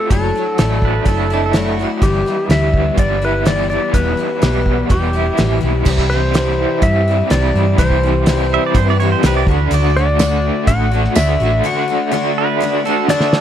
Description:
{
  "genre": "folk rock and heartland rock",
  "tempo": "125 BPM",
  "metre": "4/4",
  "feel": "straight",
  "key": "unclear",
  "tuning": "A4 = 436 Hz",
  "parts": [
    { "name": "clean lap steel guitar", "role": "melody", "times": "0.0-13.4 s", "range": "G4 to F#5", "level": "-20 LUFS", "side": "left 1 dB", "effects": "none" },
    { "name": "picked twelve-string acoustic guitar", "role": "accompaniment", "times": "0.0-13.4 s", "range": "E2 to F#4", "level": "-21 LUFS", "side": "left 7 dB", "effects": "none" },
    { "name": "raw garage guitar", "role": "riff", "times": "0.0-13.3 s", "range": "E2 to F#4", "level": "-20 LUFS", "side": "right 2 dB", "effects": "overdrive, tremolo" },
    { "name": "hollow-body short-scale fingered electric bass", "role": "bass", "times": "0.1-11.6 s", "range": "E1 to G2", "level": "-17 LUFS", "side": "equal", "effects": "none" },
    { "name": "cloth-damped thuddy drum kit", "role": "drums", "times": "0.1-13.4 s", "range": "crash cymbal, hi-hat, kick drum, snare drum", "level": "-15 LUFS", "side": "right 1 dB", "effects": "none" },
    { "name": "pedal steel guitar", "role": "second line", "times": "0.8-1.9, 8.5-13.4 s", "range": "D4 to E5", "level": "-21 LUFS", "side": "right 15 dB", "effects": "none" },
    { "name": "tambourine", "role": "percussion", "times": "10.2-11.3 s", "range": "none", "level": "-28 LUFS", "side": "right 27 dB", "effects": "none" }
  ],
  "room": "little or no reverb",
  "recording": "dry, close 1970s-style studio recording",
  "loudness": "-13 LUFS",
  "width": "side -10 dB against mid",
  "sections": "0.0-5.9 A section; 5.9-13.4 B section",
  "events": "drum fill 13.1-13.4",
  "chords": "0.1 Dadd9/F#; 2.0 G6; 3.9 Em; 5.9 C; 9.5 D",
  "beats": "| 0.11 0.59 1.07 1.55 | 2.03 2.51 2.99 3.46 | 3.94 4.42 4.91 5.39 | 5.87 6.35 6.83 7.31 | 7.79 8.27 8.75 9.24 | 9.72 10.20 10.68 11.16 | 11.65 12.13 12.61 13.09"
}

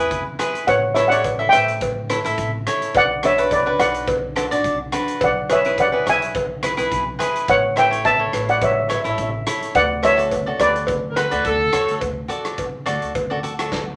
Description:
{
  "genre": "calypso",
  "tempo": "106 BPM",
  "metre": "4/4",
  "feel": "swing 54% on 16ths",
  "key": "D major",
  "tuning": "A4 = 440 Hz",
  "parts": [
    { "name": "steel pan", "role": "melody", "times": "0.0-11.7 s", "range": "B4 to A5", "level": "-19 LUFS", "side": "equal", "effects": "none" },
    { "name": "cavaquinho", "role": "accompaniment", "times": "0.0-13.8 s", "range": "D4 to E5", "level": "-26 LUFS", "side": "equal", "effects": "none" },
    { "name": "upright bass", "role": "bass", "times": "0.0-14.0 s", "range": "A1 to E2", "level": "-33 LUFS", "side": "equal", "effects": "none" },
    { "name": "big rock drum kit", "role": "drums", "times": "0.1-13.9 s", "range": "hi-hat, kick drum, rim click, snare drum", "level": "-31 LUFS", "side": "equal", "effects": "none" },
    { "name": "cowbell", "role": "percussion", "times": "0.7-13.9 s", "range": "none", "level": "-28 LUFS", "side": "equal", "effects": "none" },
    { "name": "clear horn section", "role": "second line", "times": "11.1-12.0 s", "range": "A4 to B4", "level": "-22 LUFS", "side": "equal", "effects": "none" }
  ],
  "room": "wet small room reverb, RT60 0.5 s",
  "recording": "none",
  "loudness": "-19 LUFS",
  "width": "mono",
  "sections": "0.0-12.0 A section; 12.0-14.0 B section",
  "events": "drum fill 13.7",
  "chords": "0.0 E7; 0.7 A7; 2.9 Bm; 5.2 E/B; 7.5 A; 9.7 Dmaj7; 12.0 D",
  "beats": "0.10 | 0.67 1.24 1.81 2.38 | 2.94 3.51 4.08 4.64 | 5.21 5.78 6.35 6.91 | 7.48 8.05 8.61 9.18 | 9.75 10.31 10.88 11.45 | 12.02 12.58 13.15 13.72"
}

